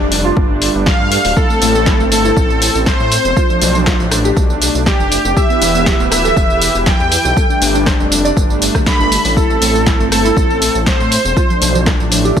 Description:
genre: progressive house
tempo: 120 BPM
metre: 4/4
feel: straight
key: A minor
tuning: A4 = 443 Hz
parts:
  - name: warm analog pad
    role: sustained chords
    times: 0.0-12.4 s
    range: E3 to B4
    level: -21 LUFS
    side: right 1 dB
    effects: wide subtle chorus, sidechain pumping
  - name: soft round pluck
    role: arpeggios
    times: 0.0-12.4 s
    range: F3 to D5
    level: -20 LUFS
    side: equal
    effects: lush chorus, sidechain pumping, digital delay
  - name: dark detuned saw bass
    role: bass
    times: 0.0-12.4 s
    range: D1 to A2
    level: -19 LUFS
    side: equal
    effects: sidechain pumping
  - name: deep house drum kit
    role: drums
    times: 0.1-12.4 s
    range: hi-hat, rim click, snare drum, tambourine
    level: -18 LUFS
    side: equal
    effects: overdrive
  - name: electronic kick drum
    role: drums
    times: 0.4-12.4 s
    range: none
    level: -15 LUFS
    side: equal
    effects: overdrive
  - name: soft supersaw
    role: melody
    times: 0.9-11.8 s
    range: G4 to B5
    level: -17 LUFS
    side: right 1 dB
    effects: sidechain pumping, digital delay
  - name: swell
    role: sound effects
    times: 8.5-9.4 s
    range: none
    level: -24 LUFS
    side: right 2 dB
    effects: none
room: light reverb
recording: none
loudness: -10 LUFS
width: side -8 dB against mid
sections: 0.0-12.4 A section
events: swell 8.5-9.4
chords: 0.0 Gsus2; 1.4 Am; 3.4 Bm7b5; 5.4 Em; 7.4 Gsus2; 9.4 Am; 11.4 Bm7b5

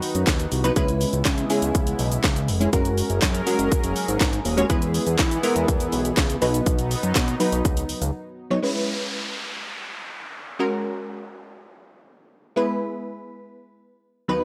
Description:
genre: dance-pop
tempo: 122 BPM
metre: 4/4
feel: straight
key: C# dorian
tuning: A4 = 440 Hz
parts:
  - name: wavetable chord stab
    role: accompaniment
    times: 0.0-14.4 s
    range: D#2 to C#5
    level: -27 LUFS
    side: equal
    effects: sidechain pumping
  - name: chorused pulse-width pad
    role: sustained chords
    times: 0.0-8.6 s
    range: C#3 to B4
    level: -31 LUFS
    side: equal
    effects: sidechain pumping
  - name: house drum kit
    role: drums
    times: 0.0-8.1 s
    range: handclaps, hi-hat, kick drum, shaker, snare drum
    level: -26 LUFS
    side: equal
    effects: none
  - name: fat analog bass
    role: bass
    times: 0.1-8.1 s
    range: D#1 to E3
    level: -28 LUFS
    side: equal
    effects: sidechain pumping
  - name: group handclap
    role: percussion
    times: 0.3-7.3 s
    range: none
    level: -37 LUFS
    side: equal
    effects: none
  - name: downlifter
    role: sound effects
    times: 8.6-12.6 s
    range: none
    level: -35 LUFS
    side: equal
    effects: none
room: light reverb, digital ambience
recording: dry, gritty hardware recording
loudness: -23 LUFS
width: mono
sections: 0.0-8.6 A section; 8.6-14.4 B section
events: break 8.1-8.6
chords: 0.0 B/D#; 0.8 C#m7; 2.7 F#add9; 4.7 E; 6.4 B; 8.6 C#m7; 10.6 F#add9; 12.6 E

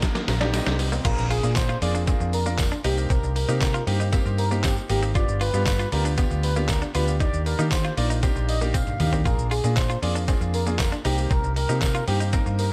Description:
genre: dance-pop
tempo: 117 BPM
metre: 4/4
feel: straight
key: C minor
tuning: A4 = 441 Hz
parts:
  - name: clear concert grand piano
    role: accompaniment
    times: 0.0-12.6 s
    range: Bb3 to Bb5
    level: -32 LUFS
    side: equal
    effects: sidechain pumping, dub echo
  - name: supersaw pad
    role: sustained chords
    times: 0.0-1.0 s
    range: none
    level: barely audible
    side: none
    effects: none
  - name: detuned 8-bit digital drum machine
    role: drums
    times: 0.0-12.7 s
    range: crash cymbal, handclaps, hi-hat, kick drum, shaker, snare drum, toms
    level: -28 LUFS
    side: equal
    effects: none
  - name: tambourine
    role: percussion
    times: 0.0-12.7 s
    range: none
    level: -45 LUFS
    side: equal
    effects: none
  - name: riser and impact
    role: sound effects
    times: 0.0-3.1 s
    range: none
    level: -39 LUFS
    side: equal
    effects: none
  - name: direct-recorded clean electric guitar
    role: riff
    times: 0.2-12.5 s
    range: Bb3 to F4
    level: -36 LUFS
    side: equal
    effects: lush chorus, dub echo
  - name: vintage muted fingered electric bass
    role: bass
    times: 0.3-12.7 s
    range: G1 to Eb3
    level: -27 LUFS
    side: equal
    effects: sidechain pumping
  - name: expressive synth lead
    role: melody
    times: 1.1-12.7 s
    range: G4 to F5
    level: -33 LUFS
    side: equal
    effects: chorus, sidechain pumping, dub echo
room: digital ambience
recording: echo-heavy mix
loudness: -23 LUFS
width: mono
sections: 0.0-1.1 A section; 1.1-12.7 B section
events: build-up 0.0-1.1; drum fill 0.0-1.1, 8.7-9.3; grand piano fill 0.0-1.1; drop 1.1-12.7; impact 1.1-3.1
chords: 0.0 Ebmaj7; 1.1 Bb7; 2.8 Cm7; 5.2 G7; 7.2 Ebmaj7; 9.3 Bb7; 11.1 Cm7

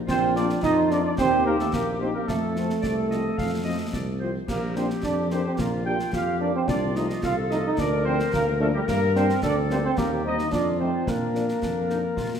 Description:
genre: military-style march for wind band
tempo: 109 BPM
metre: 2/4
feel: straight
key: Bb major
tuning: A4 = 439 Hz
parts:
  - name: mellow trumpet section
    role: melody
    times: 0.1-12.4 s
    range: G4 to G5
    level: -33 LUFS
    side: left 1 dB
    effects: none
  - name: clear euphonium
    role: second line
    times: 0.1-12.4 s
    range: G3 to G4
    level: -25 LUFS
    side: right 3 dB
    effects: none
  - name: clear woodwind section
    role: second line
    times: 0.1-12.3 s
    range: D4 to F5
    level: -31 LUFS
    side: left 2 dB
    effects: none
  - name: warm tuba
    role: bass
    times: 0.1-12.4 s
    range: Bb1 to Bb2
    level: -28 LUFS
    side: equal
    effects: none
  - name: concert snare drum, clash cymbals and concert bass drum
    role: drums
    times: 0.1-12.4 s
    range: none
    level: -33 LUFS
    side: left 1 dB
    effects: none
  - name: mellow French horn section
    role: accompaniment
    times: 0.4-12.0 s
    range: F3 to G4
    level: -33 LUFS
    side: left 5 dB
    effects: none
room: wet recital hall reverb, RT60 1.6 s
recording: none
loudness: -22 LUFS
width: side -8 dB against mid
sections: 0.0-12.4 A section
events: none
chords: 0.1 Bb; 1.2 Eb; 2.3 F; 4.5 Bb; 6.7 F/C; 7.8 Bb/D; 8.9 Gm; 10.0 Cm7/Eb; 10.5 F7; 11.1 Bb

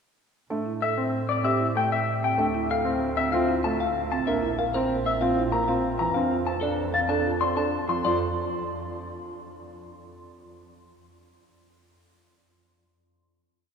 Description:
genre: classical, minimalist pattern music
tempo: 191 BPM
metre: 6/4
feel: straight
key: F major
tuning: A4 = 440 Hz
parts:
  - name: dark concert grand piano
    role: accompaniment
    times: 0.5-8.2 s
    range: E3 to D4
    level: -30 LUFS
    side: equal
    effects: none
  - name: folk marimba with soft mallets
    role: arpeggios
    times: 0.5-8.2 s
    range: C4 to D5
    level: -30 LUFS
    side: right 5 dB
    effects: none
  - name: rich double bass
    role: bass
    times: 0.5-8.2 s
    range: Bb1 to A2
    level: -34 LUFS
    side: right 3 dB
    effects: none
  - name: clean electric guitar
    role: melody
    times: 0.8-8.2 s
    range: A4 to C6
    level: -27 LUFS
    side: left 4 dB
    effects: none
  - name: mellow hollow silver concert flute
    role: arpeggios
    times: 5.1-8.2 s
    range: C6 to A6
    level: -32 LUFS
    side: left 2 dB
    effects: none
room: wet cathedral reverb, RT60 5.3 s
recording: recorded in a church or concert hall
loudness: -23 LUFS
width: side -6 dB against mid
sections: 0.5-8.0 A section; 8.0-9.9 final chord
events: none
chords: 0.5 Am; 2.4 Dm7; 4.3 Bbsus2; 6.2 F; 8.0 F5

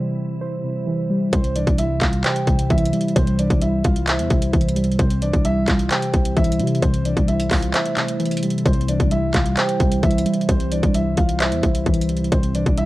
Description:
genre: hip hop, trap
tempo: 131 BPM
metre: 4/4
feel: half-time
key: C major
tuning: A4 = 440 Hz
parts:
  - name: muted felt-like synth keys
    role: accompaniment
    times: 0.0-12.9 s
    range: C3 to C5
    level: -22 LUFS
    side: equal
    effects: chorus
  - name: glassy FM pad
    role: sustained chords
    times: 0.0-12.9 s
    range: C3 to E4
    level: -30 LUFS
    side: equal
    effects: none
  - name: dark concert grand piano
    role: melody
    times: 1.3-12.9 s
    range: C4 to G5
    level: -26 LUFS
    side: equal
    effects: none
  - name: growling 808-style bass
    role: bass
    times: 1.3-12.9 s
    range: C2 to C3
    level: -23 LUFS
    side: equal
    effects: none
  - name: trap drum kit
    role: drums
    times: 1.3-12.9 s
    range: handclaps, hi-hat, kick drum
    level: -20 LUFS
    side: equal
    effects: none
room: little or no reverb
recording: dry, gritty hardware recording, cassette tape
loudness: -17 LUFS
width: side -17 dB against mid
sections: 0.0-1.3 A section; 1.3-12.9 B section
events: break 0.0-1.3; kick muted 7.7-8.7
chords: 0.0 C

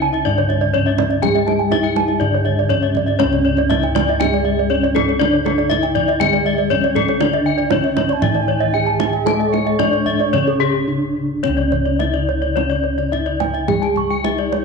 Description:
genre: Balinese gamelan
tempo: 107-125 BPM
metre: 4/4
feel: straight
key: C# pelog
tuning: A4 = 439 Hz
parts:
  - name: gamelan-type bronze metallophone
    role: melody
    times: 0.0-14.6 s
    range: C#4 to A4-40c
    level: -22 LUFS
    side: right 1 dB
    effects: none
  - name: gamelan-type bronze metallophone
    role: accompaniment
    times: 0.0-14.6 s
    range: C#3 to A3-40c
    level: -25 LUFS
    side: left 10 dB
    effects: none
  - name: gamelan-type bronze metallophone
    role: arpeggios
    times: 0.0-14.6 s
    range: A4-40c to C#6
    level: -23 LUFS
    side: right 9 dB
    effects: none
  - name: gamelan-type bossed gongs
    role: bass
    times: 0.0-14.6 s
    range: C#2 to A4-40c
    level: -22 LUFS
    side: equal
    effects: none
  - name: kendang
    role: percussion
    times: 0.0-14.6 s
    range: none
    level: -24 LUFS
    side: right 11 dB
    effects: none
  - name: gamelan-type bronze metallophone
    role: arpeggios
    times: 0.1-14.5 s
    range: G#4-45c to A5-40c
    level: -20 LUFS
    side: left 9 dB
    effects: tape echo
  - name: bansuri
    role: second line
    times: 8.1-11.1 s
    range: C#5 to C#6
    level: -26 LUFS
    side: right 8 dB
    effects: none
room: wet echo chamber reverb, RT60 1.8 s, studio reverb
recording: 1960s-style stereo with parts hard left and right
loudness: -15 LUFS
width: side -4 dB against mid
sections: 0.0-3.2 A section; 3.2-11.4 B section; 11.4-14.6 C section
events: break 10.6-11.4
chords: none

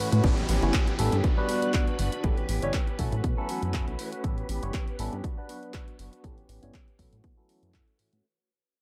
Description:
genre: filtered disco house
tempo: 120 BPM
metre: 4/4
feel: swing 55% on 16ths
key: A mixolydian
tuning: A4 = 439 Hz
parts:
  - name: phased string machine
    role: sustained chords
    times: 0.0-8.3 s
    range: B4 to B5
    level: -43 LUFS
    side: equal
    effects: ensemble chorus, phaser, sidechain pumping, low-pass filter
  - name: direct-recorded clean electric guitar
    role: riff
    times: 0.0-8.2 s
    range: E3 to G4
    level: -38 LUFS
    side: equal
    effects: tremolo, sidechain pumping, low-pass filter, analog delay
  - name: plucky analog bass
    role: bass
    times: 0.0-8.2 s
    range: G1 to B2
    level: -31 LUFS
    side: equal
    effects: sidechain pumping, low-pass filter
  - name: punchy analog drum machine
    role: drums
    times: 0.1-8.2 s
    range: handclaps, hi-hat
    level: -39 LUFS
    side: equal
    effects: sidechain pumping on hats, sidechain pumping on cymbals
  - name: barky tine electric piano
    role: accompaniment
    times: 0.2-7.8 s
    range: F#3 to C#5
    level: -35 LUFS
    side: equal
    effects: phaser, sidechain pumping, low-pass filter
  - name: electronic kick drum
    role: drums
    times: 0.2-7.8 s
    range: none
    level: -30 LUFS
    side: equal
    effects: none
  - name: downlifter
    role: sound effects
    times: 0.2-4.2 s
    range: none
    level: -40 LUFS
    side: equal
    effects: none
room: light reverb, digital ambience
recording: echo-heavy mix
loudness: -28 LUFS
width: mono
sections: 0.2-8.2 A section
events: fade-out 0.2-8.2; filter sweep on analog synth bass 0.2-8.2; filter sweep 0.2-8.2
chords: 0.2 A9; 1.2 Gmaj7; 2.2 A9; 3.0 B9sus4; 4.2 A9; 5.2 Gmaj7; 6.2 A9; 7.0 B9sus4

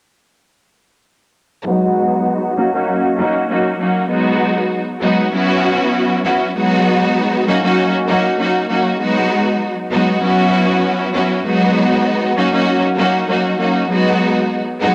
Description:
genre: hip hop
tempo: 98 BPM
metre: 4/4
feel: swing 57% on 16ths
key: G# minor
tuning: A4 = 440 Hz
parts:
  - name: rich studio string section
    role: solo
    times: 1.6-14.9 s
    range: F#3 to F#4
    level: -16 LUFS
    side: equal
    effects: cassette tape, low-pass filter
room: light reverb, studio reverb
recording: home recording on cassette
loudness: -16 LUFS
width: mono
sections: 1.7-6.6 A section; 6.6-14.9 B section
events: filter sweep on string section 1.7-6.6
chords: 1.7 G#m7; 2.6 D#m7; 4.1 G#m7; 5.3 F#7sus4; 6.6 G#m7; 7.5 D#m7; 9.0 G#m7; 10.2 F#7sus4; 11.4 G#m7; 12.4 D#m7; 13.9 G#m7

